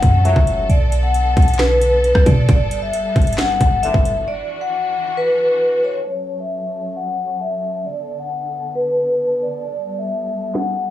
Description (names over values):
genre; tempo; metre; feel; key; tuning
hip hop, trap; 134 BPM; 4/4; half-time; F# phrygian; A4 = 438 Hz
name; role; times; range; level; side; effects
vibraphone with medium mallets; melody; 0.0-10.9 s; B4 to F#5; -19 LUFS; left 1 dB; none
rich studio string section; sustained chords; 0.0-10.9 s; D3 to A4; -29 LUFS; left 2 dB; none
clean 808-style bass; bass; 0.0-4.3 s; F#1 to B2; -17 LUFS; equal; none
trap drum kit; drums; 0.0-10.9 s; handclaps, hi-hat, kick drum, rim click, snare drum; -17 LUFS; equal; overdrive
warm brass ensemble; stabs; 0.2-0.7, 3.8-4.3 s; B1 to F#3; -26 LUFS; left 3 dB; none
room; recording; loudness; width
small room ambience; low-pass filter, small room reverb; -15 LUFS; side -13 dB against mid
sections
0.0-6.1 A section; 6.1-10.9 B section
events
break 4.3-6.1; filter sweep 6.1-10.9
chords
0.0 F#m; 0.7 Bm7; 2.5 Gadd9; 4.3 Dadd9; 6.1 F#m; 7.9 Bm7; 9.7 Gadd9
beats
0.25 | 0.70 1.14 1.59 2.04 | 2.49 2.94 3.38 3.83 | 4.28 4.73 5.17 5.62 | 6.07 6.52 6.96 7.41 | 7.86 8.31 8.76 9.20 | 9.65 10.10 10.55